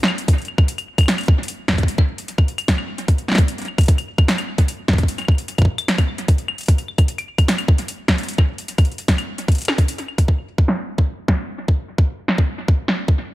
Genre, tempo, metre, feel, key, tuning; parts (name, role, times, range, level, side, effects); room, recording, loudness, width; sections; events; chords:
IDM; 150 BPM; 4/4; straight
electro analog drum machine; drums; 0.0-13.0 s; claves, hi-hat, snare drum; -22 LUFS; equal; low-pass filter on hats, low-pass filter on perc, low-pass filter on snare, low-pass filter on room, tape echo
electronic kick drum; drums; 0.3-13.2 s; -15 LUFS; equal
little or no reverb; echo-heavy mix, faint mains hum; -16 LUFS; side -17 dB against mid
0.0-10.3 A section; 10.3-13.3 B section
drum fill 10.1; filter sweep on drum 10.3-13.3